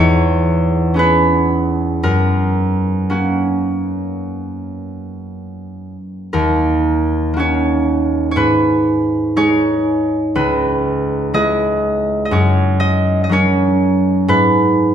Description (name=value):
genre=classical, solo harp piece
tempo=55-62 BPM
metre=4/4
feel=rubato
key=unclear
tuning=A4 = 445 Hz
part: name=concert harp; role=solo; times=0.0-14.9 s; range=C#2 to D#5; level=-14 LUFS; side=equal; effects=none
room=wet recital hall reverb, RT60 1.6 s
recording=minimal, uncompressed stereo recording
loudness=-13 LUFS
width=side -9 dB against mid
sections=0.0-14.9 A section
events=none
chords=0.0 C#m7/E; 2.0 F#; 6.3 D#m7; 8.4 G#m; 10.3 C#m7; 12.3 F#; 14.3 G#m